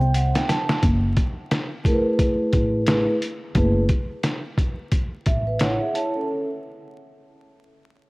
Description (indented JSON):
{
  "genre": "hip hop, jazz-hop",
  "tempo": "88 BPM",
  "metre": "4/4",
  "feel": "swing 59% on 16ths",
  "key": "F# minor",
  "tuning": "A4 = 440 Hz",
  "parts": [
    { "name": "breathy flugelhorn", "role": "melody", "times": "0.0-0.5 s", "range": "C5", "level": "-41 LUFS", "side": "left 1 dB", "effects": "none" },
    { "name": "vibraphone with soft mallets", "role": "accompaniment", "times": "0.0-6.5 s", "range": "A3 to A5", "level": "-24 LUFS", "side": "right 1 dB", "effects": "none" },
    { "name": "upright bass", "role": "bass", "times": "0.0-5.8 s", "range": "F#1 to C2", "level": "-22 LUFS", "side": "equal", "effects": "none" },
    { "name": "congas and tube shaker", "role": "percussion", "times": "0.0-0.8 s", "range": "none", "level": "-33 LUFS", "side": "left 2 dB", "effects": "none" },
    { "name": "trip hop sampler-style drum kit", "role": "drums", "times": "0.1-6.1 s", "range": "hi-hat, kick drum, snare drum", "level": "-22 LUFS", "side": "equal", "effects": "none" }
  ],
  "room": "light reverb, small room reverb",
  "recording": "worn, warbling old tape, cassette tape, vinyl crackle, warbly pitch drift",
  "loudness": "-20 LUFS",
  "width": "side -24 dB against mid",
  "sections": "0.8-6.3 A section",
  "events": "vibraphone fill 0.0-0.8, 4.9-6.3; drum fill 0.1-0.8",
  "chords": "0.0 Am; 0.8 F#m11"
}